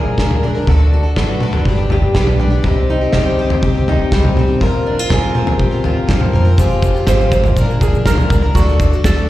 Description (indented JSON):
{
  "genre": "indie folk with a building arrangement",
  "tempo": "122 BPM",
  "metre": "4/4",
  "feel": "straight",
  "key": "unclear",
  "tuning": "A4 = 440 Hz",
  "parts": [
    { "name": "fingerpicked steel-string acoustic guitar", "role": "accompaniment", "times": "0.0-8.6 s", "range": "G2 to B4", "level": "-21 LUFS", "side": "left 1 dB", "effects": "slapback echo" },
    { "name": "picked plugged-in twelve-string acoustic guitar", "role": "accompaniment", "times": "0.0-9.3 s", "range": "G2 to Bb4", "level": "-20 LUFS", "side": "left 2 dB", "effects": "slapback echo" },
    { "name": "upright bass", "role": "bass", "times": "0.1-9.3 s", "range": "F1 to C3", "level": "-16 LUFS", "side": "equal", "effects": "none" },
    { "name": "loose indie drum kit", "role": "drums", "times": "0.2-9.2 s", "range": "kick drum, snare drum, toms", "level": "-16 LUFS", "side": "equal", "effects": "none" },
    { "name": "egg shaker", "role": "percussion", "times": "6.6-9.2 s", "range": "none", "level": "-39 LUFS", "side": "right 4 dB", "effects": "none" },
    { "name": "ukulele", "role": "arpeggios", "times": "7.1-9.3 s", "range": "F#4 to C5", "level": "-21 LUFS", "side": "right 4 dB", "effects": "slapback echo" }
  ],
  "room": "small room ambience",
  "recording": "live gig heard through the venue's PA, recital hall reverb",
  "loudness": "-12 LUFS",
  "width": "side -15 dB against mid",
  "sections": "0.0-9.3 A section",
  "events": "build-up 0.0-9.3; drum fill 0.0-9.3",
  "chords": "0.0 Bb7; 0.7 D; 1.7 G; 2.6 Cm; 4.6 Bbsus2; 6.6 Fmadd9; 7.6 Bb7; 8.6 D",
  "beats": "0.18 | 0.67 1.17 1.66 2.15 | 2.65 3.14 3.63 4.13 | 4.62 5.11 5.60 6.10 | 6.59 7.08 7.57 8.06 | 8.56 9.05"
}